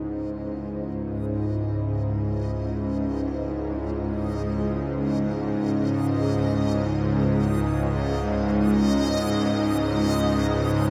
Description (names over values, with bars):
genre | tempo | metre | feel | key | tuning
dark ambient drone | free time | none | none | C# harmonic minor | A4 = 440 Hz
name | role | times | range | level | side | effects
deep dark ambient pad | sustained chords | 0.0-10.9 s | C#4 to C#5 | -37 LUFS | equal | none
bowed-like drone | drone | 0.0-10.9 s | C#2 to G#2 | -25 LUFS | equal | built-in reverb
backwards swelling texture | texture | 0.0-10.9 s | D#5 | -37 LUFS | equal | built-in reverb
room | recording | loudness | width
wet huge ambient reverb, RT60 7.4 s | dreamy mix soaked in reverb | -25 LUFS | mono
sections
0.0-10.9 A section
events
fade-in on synth texture 0.0-10.9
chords
0.0 C#m